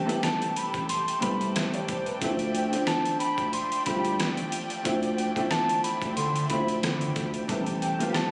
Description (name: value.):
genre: hip hop, boom-bap hip-hop.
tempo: 91 BPM.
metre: 4/4.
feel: swing 54% on 16ths.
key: D dorian.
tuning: A4 = 439 Hz.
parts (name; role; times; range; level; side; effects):
trumpet with cup mute; melody; 0.0-8.3 s; G5 to C6; -32 LUFS; equal; tape echo.
clear upright piano; accompaniment; 0.0-8.3 s; C3 to E5; -33 LUFS; equal; cassette tape.
muted studio string section; sustained chords; 0.0-8.3 s; F3 to A5; -39 LUFS; equal; none.
saturated sub bass; bass; 0.0-7.9 s; A1 to D3; -34 LUFS; equal; none.
trip hop sampler-style drum kit; drums; 0.1-8.3 s; hi-hat, kick drum, rim click, snare drum; -34 LUFS; equal; none.
room: light reverb.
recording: recorded on a phone in the room, club reverb.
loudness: -27 LUFS.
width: mono.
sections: 0.0-8.3 A section.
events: none.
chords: 0.0 Am9; 2.2 Dm9; 7.5 Am9.